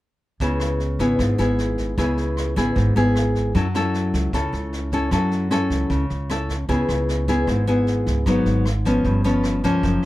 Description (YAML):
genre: bossa nova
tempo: 153 BPM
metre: 4/4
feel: straight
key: C# minor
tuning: A4 = 441 Hz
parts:
  - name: nylon-string guitar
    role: accompaniment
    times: 0.4-10.1 s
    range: F#2 to A4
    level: -20 LUFS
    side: left 1 dB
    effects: none
  - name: upright bass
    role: bass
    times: 0.4-10.0 s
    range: F#1 to F#2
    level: -24 LUFS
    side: right 1 dB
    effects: none
  - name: vintage brush drum kit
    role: drums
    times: 0.4-10.1 s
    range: kick drum, rim click, snare drum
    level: -31 LUFS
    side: right 1 dB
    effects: none
room: light reverb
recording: none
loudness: -18 LUFS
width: side -16 dB against mid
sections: 0.4-6.7 A section; 6.7-10.1 B section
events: none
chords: 0.4 C#m7; 3.5 F#m7; 6.7 C#m7; 8.3 G#m7; 9.0 G7#11